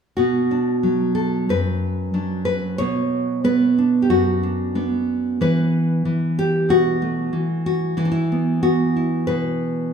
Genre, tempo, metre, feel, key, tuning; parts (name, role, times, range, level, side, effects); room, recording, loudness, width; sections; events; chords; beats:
folk, solo fingerstyle acoustic guitar; 92 BPM; 4/4; rubato; B minor; A4 = 440 Hz
nylon-string guitar; solo; 0.2-9.9 s; F#2 to C#5; -18 LUFS; equal
wet large studio reverb, RT60 1.3 s; band playing live in one room; -18 LUFS; side -6 dB against mid
0.2-9.9 A section
0.2 Bm; 5.4 Esus2
| 0.17 0.84 1.50 2.15 | 2.80 3.45 4.11 4.76 | 5.41 6.05 6.69 7.33 | 7.97 8.62 9.28